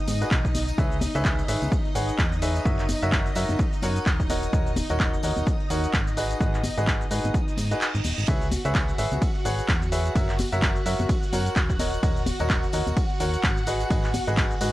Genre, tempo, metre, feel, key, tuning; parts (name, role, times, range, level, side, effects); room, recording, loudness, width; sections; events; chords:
piano house; 128 BPM; 4/4; swing 58% on 16ths; C# dorian; A4 = 440 Hz
string machine, violins; sustained chords; 0.0-14.7 s; D#4 to F#5; -33 LUFS; equal; ensemble chorus, sidechain pumping
solid FM bass; bass; 0.1-14.7 s; D#1 to G#2; -28 LUFS; equal; sidechain pumping
punchy analog drum machine; drums; 0.1-14.7 s; handclaps, hi-hat, ride cymbal, shaker; -31 LUFS; equal
tambourine and congas; percussion; 0.1-14.7 s; -35 LUFS; left 3 dB
clear concert grand piano; riff; 0.2-14.7 s; F#4 to F#5; -30 LUFS; equal; sidechain pumping
electronic kick drum; drums; 0.3-14.5 s; -25 LUFS; equal; overdrive
reverse cymbal; sound effects; 7.6-8.3 s; -35 LUFS; right 6 dB
digital ambience; dry, gritty hardware recording, cassette tape; -22 LUFS; side -16 dB against mid
0.0-14.7 A section
reverse cymbal 7.6-8.3; kick drops out 7.8-8.3
0.0 G#m7; 0.8 C#m7; 2.7 F#7; 4.3 D#m7; 6.2 G#m7; 8.3 C#m7; 10.2 F#7; 11.8 D#m7; 13.7 G#m7